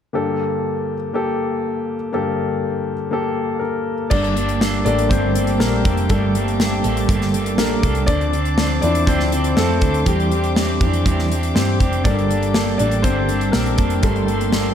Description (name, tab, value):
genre	piano-driven pop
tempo	121 BPM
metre	4/4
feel	straight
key	unclear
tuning	A4 = 440 Hz
part	clear grand piano	accompaniment	0.1-14.7 s	G2 to D5	-21 LUFS	left 3 dB	slapback echo
part	warm studio string section	sustained chords	4.1-14.7 s	G4 to D6	-29 LUFS	left 4 dB	none
part	electric guitar at the edge of break-up	riff	4.1-14.7 s	G2 to A4	-22 LUFS	right 4 dB	harmonic tremolo, slapback echo
part	hollow-body short-scale picked electric bass	bass	4.1-14.7 s	F1 to G2	-22 LUFS	right 1 dB	none
part	modern studio drum kit	drums	4.1-14.6 s	crash cymbal, hi-hat, kick drum, snare drum	-21 LUFS	equal	none
room	moderate lush hall reverb, RT60 1.8 s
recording	big arena sound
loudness	-16 LUFS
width	side -9 dB against mid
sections	0.1-4.1 A section; 4.1-14.7 B section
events	grand piano solo 4.1-14.7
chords	0.1 Gmadd9; 8.1 Dm7; 10.1 Cadd9/E; 12.1 Gmadd9